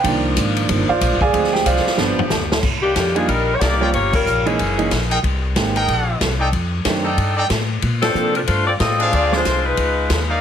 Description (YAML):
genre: jazz, big band swing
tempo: 185 BPM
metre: 4/4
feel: swing 61% on 8ths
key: C minor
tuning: A4 = 440 Hz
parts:
  - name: clear concert grand piano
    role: accompaniment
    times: 0.0-9.4 s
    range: Eb3 to Ab5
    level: -20 LUFS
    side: right 4 dB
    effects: none
  - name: edgy saxophone section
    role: sustained chords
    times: 0.0-2.6 s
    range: F3 to Bb4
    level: -28 LUFS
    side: left 2 dB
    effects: none
  - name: upright bass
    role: bass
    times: 0.0-10.4 s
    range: Eb1 to C3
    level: -21 LUFS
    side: left 1 dB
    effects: none
  - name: swinging big-band drum kit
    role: drums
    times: 0.0-10.2 s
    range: crash cymbal, hi-hat, kick drum, ride cymbal, snare drum, toms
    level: -22 LUFS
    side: left 1 dB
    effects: none
  - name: clear saxophone section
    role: melody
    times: 2.8-5.1, 8.0-10.3 s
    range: Eb3 to Eb5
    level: -18 LUFS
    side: left 2 dB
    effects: none
  - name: bright trumpet section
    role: stabs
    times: 3.8-10.4 s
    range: D4 to G5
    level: -21 LUFS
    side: equal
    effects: none
room: light reverb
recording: heavily compressed radio sound, multiband compression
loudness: -16 LUFS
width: side -9 dB against mid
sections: 0.0-2.6 A section; 2.6-10.4 B section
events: grand piano solo 0.0-2.6; drum fill 2.0-2.6; band accent 4.1, 8.0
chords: 0.0 Cm11; 1.3 Dm7b5; 2.0 G7; 2.6 Cm11; 3.9 Gm7b5; 4.6 F#13; 5.2 Abmaj9; 6.5 F13; 7.8 Bbmaj9; 9.1 Dm7b5; 9.8 Db9